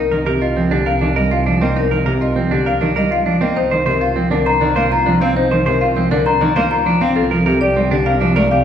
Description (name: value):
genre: classical, minimalist pattern music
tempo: 100 BPM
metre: 3/4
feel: straight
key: C minor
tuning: A4 = 438 Hz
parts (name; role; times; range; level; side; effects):
- marimba with medium mallets; melody; 0.0-8.6 s; G4 to Bb5; -18 LUFS; left 4 dB; none
- clean electric guitar; arpeggios; 0.0-8.6 s; C4 to C5; -20 LUFS; right 4 dB; none
- rich double bass; bass; 0.0-8.6 s; C2; -21 LUFS; right 2 dB; none
- rich cello; accompaniment; 0.1-8.5 s; C3 to C4; -19 LUFS; right 1 dB; none
room: wet recital hall reverb, RT60 1.7 s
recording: heard from further back in the room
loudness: -13 LUFS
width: side -8 dB against mid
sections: 0.0-8.6 A section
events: none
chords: 0.0 Cm9; 3.6 F7sus4/C; 7.2 Gm7/C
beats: 0.56 1.16 | 1.76 2.36 2.96 | 3.56 4.16 4.76 | 5.36 5.96 6.56 | 7.16 7.76 8.36